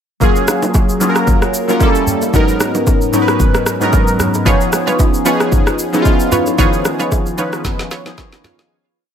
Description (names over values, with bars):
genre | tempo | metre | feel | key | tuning
amapiano | 113 BPM | 4/4 | swing 55% on 16ths | unclear | A4 = 441 Hz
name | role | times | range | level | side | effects
warm analog keys | accompaniment | 0.2-8.8 s | G#2 to G#5 | -15 LUFS | equal | chorus, phaser
afro-pop drum kit | drums | 0.2-8.7 s | kick drum, rim click, shaker, snare drum | -15 LUFS | equal | overdrive
congas and bongos | percussion | 0.2-8.7 s | none | -23 LUFS | right 1 dB | none
analog pluck | stabs | 4.5-8.6 s | E#4 to C#5 | -20 LUFS | right 3 dB | chorus, tape echo
room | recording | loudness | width
digital ambience | none | -12 LUFS | side -8 dB against mid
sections
0.2-8.7 groove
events
fade-out 6.6-8.7; drum fill 7.6-8.7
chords
0.2 F#maj7; 1.8 Gdim7; 2.3 G#m11; 4.5 C#7